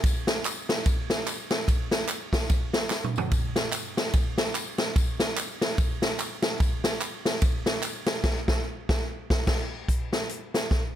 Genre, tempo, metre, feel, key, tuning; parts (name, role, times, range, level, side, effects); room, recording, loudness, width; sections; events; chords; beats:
gospel; 146 BPM; 4/4; swing 59% on 8ths
swinging big-band drum kit; drums; 0.0-10.8 s; crash cymbal, hi-hat, kick drum, ride cymbal, snare drum, toms; -25 LUFS; equal
tambourine and handclaps; percussion; 0.1-8.2 s; -35 LUFS; right 1 dB
light reverb; -24 LUFS; side -11 dB against mid
0.0-9.9 A section; 9.9-11.0 B section
drum fill 2.9-3.3, 10.7; band accent 8.2-9.9
| 0.04 0.45 0.86 1.27 | 1.68 2.09 2.50 2.91 | 3.32 3.73 4.14 4.55 | 4.96 5.37 5.78 6.19 | 6.60 7.01 7.42 7.83 | 8.24 8.65 9.06 9.47 | 9.88 10.30 10.71